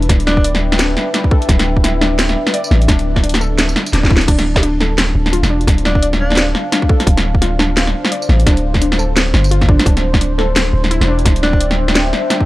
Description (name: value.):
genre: half-time drum and bass.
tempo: 172 BPM.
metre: 4/4.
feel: swing 59% on 16ths, half-time.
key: unclear.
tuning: A4 = 440 Hz.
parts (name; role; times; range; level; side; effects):
deep dark ambient pad; sustained chords; 0.0-12.5 s; D4 to A5; -23 LUFS; left 1 dB; chorus, built-in reverb, sidechain pumping.
warbly dusty pluck; arpeggios; 0.0-12.5 s; D4 to D5; -22 LUFS; left 1 dB; chorus, tape echo.
long sustained 808-style bass; bass; 0.0-12.1 s; D1 to A1; -16 LUFS; equal; none.
drum and bass drum kit; drums; 0.0-12.4 s; crash cymbal, hi-hat, snare drum, tambourine; -16 LUFS; equal; none.
electronic kick drum; drums; 0.1-12.5 s; none; -13 LUFS; equal; none.
clear alto saxophone; melody; 0.3-0.5, 5.9-6.5, 11.4-11.6 s; D4; -23 LUFS; equal; tape echo.
room: little or no reverb.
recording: dry, gritty hardware recording.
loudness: -11 LUFS.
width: side -18 dB against mid.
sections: 0.0-12.5 A section.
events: drum fill 3.9-4.3.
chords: 0.0 Em/D; 4.3 F/D; 9.9 Cadd9/D.